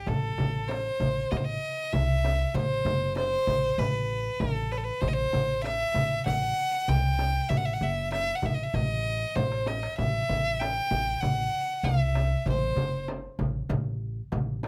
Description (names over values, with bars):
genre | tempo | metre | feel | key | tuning
Arabic maqam ensemble | 97 BPM | 4/4 | straight | A maqam nikriz | A4 = 445 Hz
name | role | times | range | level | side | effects
bright violin | melody | 0.0-13.1 s | A4 to G5 | -31 LUFS | equal | none
upright bass | bass | 0.1-14.7 s | F#1 to C2 | -32 LUFS | equal | none
darbuka | percussion | 0.1-14.7 s | none | -36 LUFS | equal | none
frame drum | percussion | 0.1-14.7 s | none | -38 LUFS | equal | none
room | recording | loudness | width
light reverb | none | -28 LUFS | mono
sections
0.1-14.7 A section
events
drum fill 9.4-10.0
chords
none